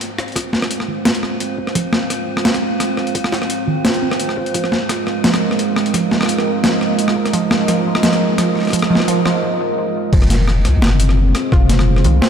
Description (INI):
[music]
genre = half-time drum and bass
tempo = 172 BPM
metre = 4/4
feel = swing 54% on 16ths, half-time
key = F minor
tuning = A4 = 442 Hz
[part]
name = deep dark ambient pad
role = sustained chords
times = 0.0-12.3 s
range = Ab3 to F5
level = -20 LUFS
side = right 3 dB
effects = chorus, built-in reverb, sidechain pumping
[part]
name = boom bap sampler-style drum kit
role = drums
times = 0.0-12.3 s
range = crash cymbal, hi-hat, rim click, snare drum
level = -19 LUFS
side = equal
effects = overdrive
[part]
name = metallic inharmonic drone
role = texture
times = 0.0-9.4 s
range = C4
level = -27 LUFS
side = right 1 dB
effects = chorus, built-in reverb, phaser
[part]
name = warbly dusty pluck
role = arpeggios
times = 0.4-12.3 s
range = Eb3 to F4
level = -22 LUFS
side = right 3 dB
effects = chorus, ping-pong delay
[part]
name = electronic kick drum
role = drums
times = 0.4-11.6 s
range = none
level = -16 LUFS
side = equal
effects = overdrive, high-pass filter on kick, high-pass filter on room
[part]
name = deep soft wobble bass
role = bass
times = 10.1-12.2 s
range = F1 to C2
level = -13 LUFS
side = left 1 dB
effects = chorus
[sound]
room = wet church reverb, RT60 3.1 s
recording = dreamy mix soaked in reverb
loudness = -14 LUFS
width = side -8 dB against mid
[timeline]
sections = 0.0-10.1 A section; 10.1-12.3 B section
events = build-up 0.0-10.1; filter sweep on synth pluck 0.0-10.1; break 9.4-10.1; drop 10.1-12.3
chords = 0.0 Fm